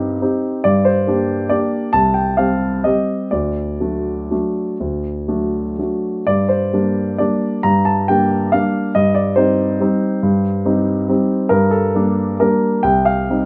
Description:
classical, piano waltz; 117-148 BPM; 3/4; rubato; G minor; A4 = 440 Hz
warm grand piano; solo; 0.0-13.5 s; C2 to Bb5; -17 LUFS; equal
moderate studio reverb, RT60 0.6 s; -17 LUFS; mono
0.0-13.5 A section
0.0 Cm/G; 0.6 Gm; 1.9 Cm; 3.3 D; 6.3 Gm; 8.9 Cm/G; 11.5 Gm; 12.8 Cm

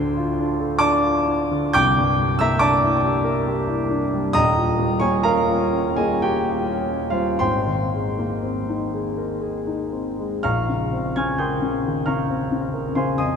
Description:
classical, impressionist solo piano; 48-72 BPM; 3/4; rubato; Bb dorian from 4.4 s; A4 = 436 Hz
warm concert grand piano; solo; 0.0-13.4 s; Eb1 to Ab6; -19 LUFS; equal
wet cathedral reverb, RT60 5.3 s; in a vast, echoing space; -19 LUFS; side -6 dB against mid
0.0-10.4 A section; 10.4-13.4 B section
0.0 Dm7; 1.8 C9; 4.4 Eb9; 7.4 Abadd9; 10.4 Bbmadd9

